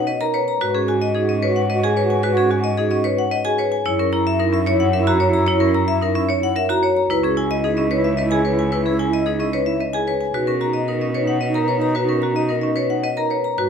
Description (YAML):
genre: classical, minimalist pattern music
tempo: 111 BPM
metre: 3/4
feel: straight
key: B major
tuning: A4 = 441 Hz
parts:
  - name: vibraphone with medium hard mallets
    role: melody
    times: 0.0-13.7 s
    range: G#4 to A#5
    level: -21 LUFS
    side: left 8 dB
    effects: none
  - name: bright wooden-headed alto flute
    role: second line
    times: 0.0-13.7 s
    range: D#4 to F#4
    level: -25 LUFS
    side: right 3 dB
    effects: none
  - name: clear cello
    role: bass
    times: 0.0-13.7 s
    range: C#2 to B2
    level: -24 LUFS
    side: right 3 dB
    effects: none
  - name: marimba with hard mallets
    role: arpeggios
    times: 0.1-13.7 s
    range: C#4 to C#5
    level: -22 LUFS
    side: right 4 dB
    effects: none
room: light reverb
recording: none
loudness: -17 LUFS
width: side -7 dB against mid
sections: 0.0-13.7 A section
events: none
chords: 0.0 Bmaj7; 0.6 G#m7; 3.9 F#7; 7.1 C#m7; 10.3 Bmaj7